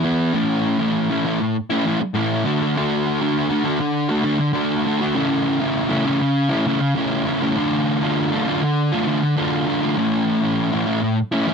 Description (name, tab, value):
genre	rock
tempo	100 BPM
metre	4/4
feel	straight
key	A major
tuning	A4 = 442 Hz
part	fuzz guitar	solo	0.0-11.5 s	A2 to F#4	-18 LUFS	equal	distortion
room	moderate studio ambience, RT60 0.4 s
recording	dark, warm production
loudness	-18 LUFS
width	side -6 dB against mid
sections	0.3-11.5 A section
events	none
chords	0.3 A; 2.4 D; 5.2 A/C#; 7.6 Dm; 10.0 A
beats	| 0.34 0.94 1.55 2.15 | 2.75 3.35 3.96 4.56 | 5.16 5.76 6.36 6.96 | 7.57 8.17 8.77 9.37 | 9.97 10.57 11.17